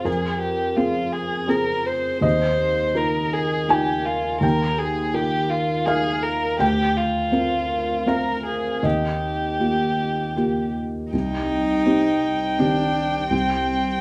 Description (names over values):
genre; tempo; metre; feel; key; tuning
neoclassical piano and strings; 82 BPM; 3/4; rubato; Eb major; A4 = 440 Hz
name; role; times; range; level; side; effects
dark violin; melody; 0.0-14.0 s; F4 to G5; -26 LUFS; equal; none
felt-muted upright piano; accompaniment; 0.0-14.0 s; C2 to Ab5; -25 LUFS; equal; none
clear cello; second line; 11.1-14.0 s; C4 to Eb4; -26 LUFS; equal; none
room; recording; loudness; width
moderate large studio reverb, RT60 0.8 s; band playing live in one room; -22 LUFS; mono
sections
0.0-11.1 A section; 11.1-14.0 A section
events
none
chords
0.0 Fm; 2.2 Ebsus2; 6.6 Bbadd9/D; 8.8 Ebadd9; 11.1 Cm